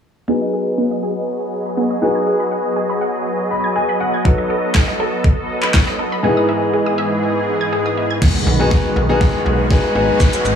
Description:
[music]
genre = dance-pop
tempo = 121 BPM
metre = 4/4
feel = straight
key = B major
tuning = A4 = 438 Hz
[part]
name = clear grand piano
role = accompaniment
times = 0.3-10.6 s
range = G#2 to B5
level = -20 LUFS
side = left 2 dB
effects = sidechain pumping, low-pass filter
[part]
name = filtered supersaw swell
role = sustained chords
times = 0.3-10.6 s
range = G#2 to D#5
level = -20 LUFS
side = right 1 dB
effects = sidechain pumping, low-pass filter
[part]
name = wide unison pluck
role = arpeggios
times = 0.3-8.2 s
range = B3 to G#6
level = -24 LUFS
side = right 2 dB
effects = sidechain pumping, low-pass filter, tape echo
[part]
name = pop drum kit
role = drums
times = 4.3-10.6 s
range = crash cymbal, handclaps, hi-hat, kick drum, shaker, snare drum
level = -15 LUFS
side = equal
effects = none
[part]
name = riser and impact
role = sound effects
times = 8.2-10.6 s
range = none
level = -24 LUFS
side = right 1 dB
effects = none
[part]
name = slap-like FM bass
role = bass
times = 8.5-10.6 s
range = G#1 to B1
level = -18 LUFS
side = equal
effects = sidechain pumping
[sound]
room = light reverb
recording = small room ambience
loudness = -15 LUFS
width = side -8 dB against mid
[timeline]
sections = 0.3-8.2 A section; 8.2-10.6 B section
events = filter sweep 0.3-8.2; grand piano fill 3.3-4.3; build-up 8.2-10.6; drum fill 8.2-10.6; impact 8.2-10.2; riser 8.2-10.6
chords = 0.3 B6; 4.3 B7/F#; 6.2 Emaj7/G#; 8.2 B6; 10.0 G#m7

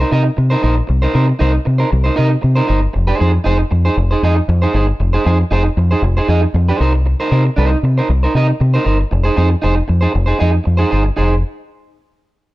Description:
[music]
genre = disco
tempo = 117 BPM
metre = 4/4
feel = straight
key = F minor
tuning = A4 = 438 Hz
[part]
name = electric guitar at the edge of break-up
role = accompaniment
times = 0.0-11.3 s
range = Eb4 to Eb5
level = -18 LUFS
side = right 2 dB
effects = none
[part]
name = deep dub fingered electric bass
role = bass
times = 0.0-11.4 s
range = F1 to C3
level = -13 LUFS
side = equal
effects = none
[sound]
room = little or no reverb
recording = dark, warm production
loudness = -12 LUFS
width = side -17 dB against mid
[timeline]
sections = 0.0-11.2 A section; 11.2-12.5 B section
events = none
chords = 0.0 Cm7; 2.9 Fm7; 6.8 Cm7; 9.1 Fm7

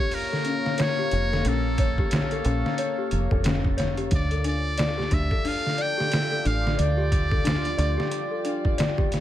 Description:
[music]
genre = trip hop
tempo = 90 BPM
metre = 4/4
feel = swing 59% on 16ths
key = D harmonic minor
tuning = A4 = 440 Hz
[part]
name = trumpet with metal mute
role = melody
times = 0.0-8.8 s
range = A4 to G5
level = -30 LUFS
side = right 1 dB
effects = tape echo
[part]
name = deep dark ambient pad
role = sustained chords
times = 0.0-9.2 s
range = Bb3 to F5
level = -32 LUFS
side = left 2 dB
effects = chorus, built-in reverb
[part]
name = small celesta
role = arpeggios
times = 0.0-9.2 s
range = Db4 to D5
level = -30 LUFS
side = left 4 dB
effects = ping-pong delay
[part]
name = trip hop sampler-style drum kit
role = drums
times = 0.1-9.2 s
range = hi-hat, kick drum, snare drum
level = -26 LUFS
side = equal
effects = overdrive
[part]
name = deep dub fingered electric bass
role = bass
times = 1.1-8.0 s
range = F1 to D2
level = -26 LUFS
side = right 1 dB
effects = none
[sound]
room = light reverb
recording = none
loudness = -22 LUFS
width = side -12 dB against mid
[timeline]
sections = 0.0-9.2 A section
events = none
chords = 0.0 Bbm; 4.1 Dm

